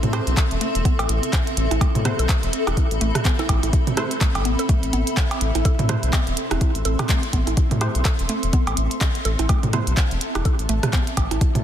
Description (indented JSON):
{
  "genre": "minimal techno",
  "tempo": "125 BPM",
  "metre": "4/4",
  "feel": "swing 58% on 16ths",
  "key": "A minor",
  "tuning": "A4 = 440 Hz",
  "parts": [
    { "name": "round analog bass", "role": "bass", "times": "0.0-11.6 s", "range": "E1 to A2", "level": "-23 LUFS", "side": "equal", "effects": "sidechain pumping" },
    { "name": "minimal click drum kit", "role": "drums", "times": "0.0-11.6 s", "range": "handclaps, hi-hat", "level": "-28 LUFS", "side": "right 1 dB", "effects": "none" },
    { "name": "techno drum kit", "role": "percussion", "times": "0.0-11.6 s", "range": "cowbell, percussion blips, rim click, toms", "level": "-26 LUFS", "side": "right 4 dB", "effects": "soft clipping on snare, tape echo" },
    { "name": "granular cloud pad", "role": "texture", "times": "0.0-11.6 s", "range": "C4 to C6", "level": "-27 LUFS", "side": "equal", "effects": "built-in reverb, sidechain pumping" },
    { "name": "filtered dub chord stab", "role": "stabs", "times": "0.1-9.8 s", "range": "A3 to C5", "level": "-32 LUFS", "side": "right 2 dB", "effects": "chorus, tape echo" },
    { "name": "electronic kick drum", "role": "drums", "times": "0.4-11.5 s", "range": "none", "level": "-20 LUFS", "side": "equal", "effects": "none" },
    { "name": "mallet-like synth pluck", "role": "riff", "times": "0.6-11.0 s", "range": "A3 to A4", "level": "-31 LUFS", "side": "left 1 dB", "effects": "chorus, sidechain pumping, ping-pong delay" }
  ],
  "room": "light reverb, digital ambience",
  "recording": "dense, heavily limited modern master",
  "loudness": "-18 LUFS",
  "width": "side -10 dB against mid",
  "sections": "0.0-11.6 A section",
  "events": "none",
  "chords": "0.0 Am"
}